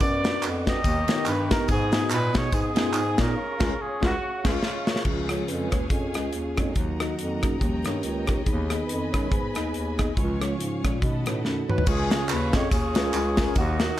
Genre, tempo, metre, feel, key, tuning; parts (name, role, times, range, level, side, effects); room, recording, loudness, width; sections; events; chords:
uptempo gospel; 142 BPM; 4/4; swing 58% on 8ths; A4 = 442 Hz
mellow horn section; melody; 0.0-5.0, 11.7-14.0 s; G#3 to D#5; -28 LUFS; equal
mellow tonewheel organ; sustained chords; 0.0-14.0 s; D#3 to D#6; -32 LUFS; right 1 dB; fast rotary speaker
dark bass clarinet; bass; 0.0-13.9 s; C#2 to B2; -29 LUFS; equal
modern studio drum kit; drums; 0.0-13.9 s; crash cymbal, hi-hat, kick drum, ride cymbal, rim click, snare drum, toms; -26 LUFS; equal
tambourine and handclaps; percussion; 0.0-3.3, 11.9-13.9 s; -35 LUFS; right 4 dB
mellow tine electric piano; accompaniment; 0.2-14.0 s; G#2 to D#5; -32 LUFS; left 1 dB; medium stereo tremolo
clear studio string section; sustained chords; 5.0-11.9 s; G#4 to C#6; -38 LUFS; equal
light reverb, small room ambience; -22 LUFS; side -13 dB against mid
0.0-5.1 A section; 5.1-11.9 B section; 11.9-14.0 A section
band accent 3.4-5.1; drum fill 4.2-5.1, 11.4-11.9; tonewheel organ solo 5.1-11.9
0.0 Bm/F#; 0.8 D#7b13; 1.7 G#m; 3.4 C#; 6.8 D#m; 7.6 D#7; 8.5 G#m/D#; 10.2 C#; 11.0 B7; 11.9 C#